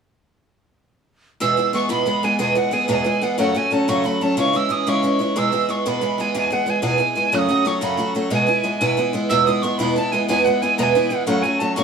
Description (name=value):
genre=celtic folk, Celtic jig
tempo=122 BPM (dotted quarters)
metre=6/8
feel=straight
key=E major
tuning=A4 = 440 Hz
part: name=breathy tin whistle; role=melody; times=1.4-11.8 s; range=F#5 to F#6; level=-21 LUFS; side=right 2 dB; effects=none
part: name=picked steel-string acoustic guitar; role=accompaniment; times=1.4-11.8 s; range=E2 to G#4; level=-19 LUFS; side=right 1 dB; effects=none
room=moderate stone room reverb, RT60 1.2 s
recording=band playing live in one room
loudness=-17 LUFS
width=side -6 dB against mid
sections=1.4-9.3 A section; 9.3-11.8 A section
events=none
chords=1.4 E; 3.4 F#m; 4.4 C#m; 5.4 E; 7.3 F#m; 8.3 E; 11.3 F#m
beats=| 1.41 1.90 | 2.39 2.89 | 3.38 3.87 | 4.37 4.86 | 5.35 5.85 | 6.34 6.83 | 7.33 7.82 | 8.31 8.81 | 9.30 9.79 | 10.29 10.78 | 11.27 11.77